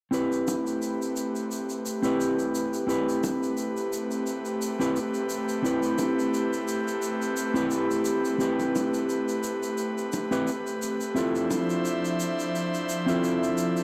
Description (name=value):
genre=sunset chillout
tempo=87 BPM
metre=4/4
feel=swing 55% on 16ths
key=A minor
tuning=A4 = 442 Hz
part: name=mellow electric guitar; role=accompaniment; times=0.1-13.8 s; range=C4 to B4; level=-30 LUFS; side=equal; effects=digital delay
part: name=airy breathy pad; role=sustained chords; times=0.1-13.8 s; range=F3 to E5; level=-31 LUFS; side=equal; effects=chorus
part: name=shaker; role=drums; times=0.1-13.8 s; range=none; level=-42 LUFS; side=equal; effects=none
part: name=bongos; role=percussion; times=0.5-11.7 s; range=none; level=-36 LUFS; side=equal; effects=none
room=wet plate reverb, RT60 1.7 s, studio reverb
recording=dark, warm production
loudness=-28 LUFS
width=mono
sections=0.1-13.8 A section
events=none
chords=0.1 Am9; 11.2 Dm9